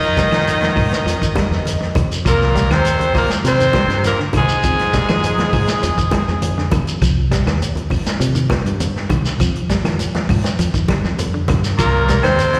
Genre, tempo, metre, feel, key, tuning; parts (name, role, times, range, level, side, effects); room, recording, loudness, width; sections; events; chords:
afrobeat; 101 BPM; 4/4; straight; A4 = 440 Hz
raspy alto saxophone; melody; 0.0-6.7, 11.8-12.6 s; Ab4 to Eb5; -22 LUFS; equal; slapback echo
raspy baritone saxophone; second line; 0.0-6.7, 11.8-12.6 s; Ab2 to Eb3; -26 LUFS; equal; slapback echo
warm trumpet; second line; 0.0-6.7, 11.8-12.6 s; Ab3 to Eb4; -28 LUFS; equal; slapback echo
semi-hollow electric guitar; arpeggios; 0.0-12.5 s; D3 to Ab3; -26 LUFS; equal; slapback echo
vintage drum kit; drums; 0.0-12.6 s; hi-hat, kick drum, snare drum; -24 LUFS; equal
fingered electric bass; bass; 0.2-12.6 s; C2 to F3; -22 LUFS; equal
congas; percussion; 0.2-12.6 s; -26 LUFS; equal; slapback echo
shekere; percussion; 0.2-12.5 s; -29 LUFS; equal; slapback echo
claves; percussion; 0.3-12.4 s; -37 LUFS; equal
small room reverb; live gig heard through the venue's PA, recital hall reverb; -17 LUFS; mono
0.0-12.6 A section
0.0 F7sus2; 2.3 Cm; 4.6 Fm7; 7.0 Cm; 9.4 F7sus2; 11.8 Cm